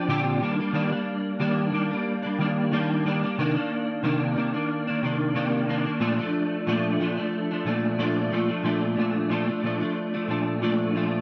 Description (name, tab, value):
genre	indie pop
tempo	91 BPM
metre	4/4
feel	swing 55% on 16ths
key	Bb major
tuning	A4 = 440 Hz
part	clean electric guitar	solo	0.0-11.2 s	Bb2 to G4	-26 LUFS	equal	ensemble chorus, warbly pitch drift
room	light reverb, digital ambience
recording	none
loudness	-26 LUFS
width	mono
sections	0.0-8.6 A section; 8.6-11.2 B section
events	none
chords	0.4 Ebmaj7; 3.4 Cm9; 6.0 Bbmaj7